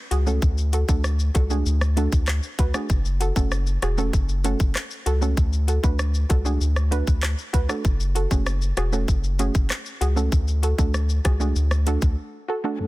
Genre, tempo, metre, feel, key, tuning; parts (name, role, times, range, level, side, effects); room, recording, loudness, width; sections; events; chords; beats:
dancehall; 97 BPM; 4/4; straight; A4 = 439 Hz
soft round pluck; accompaniment; 0.1-12.9 s; F#2 to B4; -28 LUFS; right 2 dB; chorus, sidechain pumping, low-pass filter
round analog bass; bass; 0.1-12.2 s; E1 to D2; -22 LUFS; equal
island pop drum kit; drums; 0.1-12.2 s; handclaps, hi-hat, kick drum, rim click, shaker; -23 LUFS; equal; soft clipping on snare
dark symphonic string section; sustained chords; 12.8-12.9 s; F#3 to A4; -30 LUFS; left 2 dB; sidechain pumping, low-pass filter
little or no reverb; dense, heavily limited modern master; -20 LUFS; side -19 dB against mid
0.0-12.8 A section
break 12.2-12.8
0.4 D; 2.9 F#m; 5.4 D; 7.8 F#m; 10.3 D
| 0.42 1.04 1.66 2.28 | 2.90 3.52 4.14 4.75 | 5.37 5.99 6.61 7.23 | 7.85 8.47 9.08 9.70 | 10.32 10.94 11.56 12.18 | 12.79